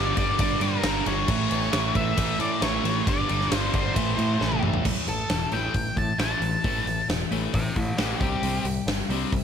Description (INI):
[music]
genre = quiet-loud alternative rock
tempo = 134 BPM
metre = 4/4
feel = straight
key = unclear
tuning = A4 = 440 Hz
[part]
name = octave-fuzz lead guitar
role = melody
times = 0.0-8.6 s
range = C#4 to A5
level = -29 LUFS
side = left 1 dB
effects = distortion, tape echo
[part]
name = distorted electric guitar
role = riff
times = 0.0-9.4 s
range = G2 to C4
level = -31 LUFS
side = left 13 dB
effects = overdrive
[part]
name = thick fuzz guitar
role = riff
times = 0.0-4.8 s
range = G2 to A3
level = -28 LUFS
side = right 13 dB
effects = distortion
[part]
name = overdriven picked electric bass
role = bass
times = 0.0-9.4 s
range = E1 to A2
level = -29 LUFS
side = equal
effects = none
[part]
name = big rock drum kit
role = drums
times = 0.2-9.4 s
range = crash cymbal, hi-hat, kick drum, ride cymbal, snare drum, toms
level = -27 LUFS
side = equal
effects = none
[part]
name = twelve-string electric guitar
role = arpeggios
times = 4.8-9.4 s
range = A2 to C4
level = -33 LUFS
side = right 1 dB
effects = analog chorus
[sound]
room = studio reverb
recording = none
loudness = -22 LUFS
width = side -8 dB against mid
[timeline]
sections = 0.0-4.9 A section; 4.9-9.4 B section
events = drum fill 4.4-4.9; lead electric guitar solo 4.9-9.4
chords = 0.0 Gm; 1.3 A; 3.1 G5; 4.0 Am; 4.9 A5; 8.2 C5